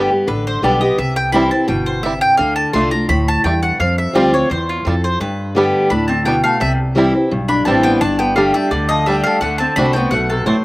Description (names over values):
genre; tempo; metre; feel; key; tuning
bluegrass; 171 BPM; 4/4; straight; C major; A4 = 440 Hz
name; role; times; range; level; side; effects
picked steel-string acoustic guitar; accompaniment; 0.0-10.6 s; E2 to G4; -16 LUFS; equal; none
upright bass; bass; 0.0-10.6 s; G1 to G2; -21 LUFS; equal; none
mandolin; melody; 0.3-10.6 s; F4 to C6; -18 LUFS; equal; none
bluegrass banjo; melody; 0.6-10.6 s; G3 to F4; -23 LUFS; right 4 dB; slapback echo
lap resonator guitar; second line; 5.9-10.6 s; C3 to D4; -20 LUFS; left 1 dB; none
room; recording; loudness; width
light reverb; recorded outdoors, with no room sound; -13 LUFS; side -20 dB against mid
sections
0.0-10.6 A section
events
none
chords
0.0 G; 1.0 C; 2.4 Dm; 3.8 Fsus2; 5.2 G; 6.6 C; 8.0 G5; 9.4 D7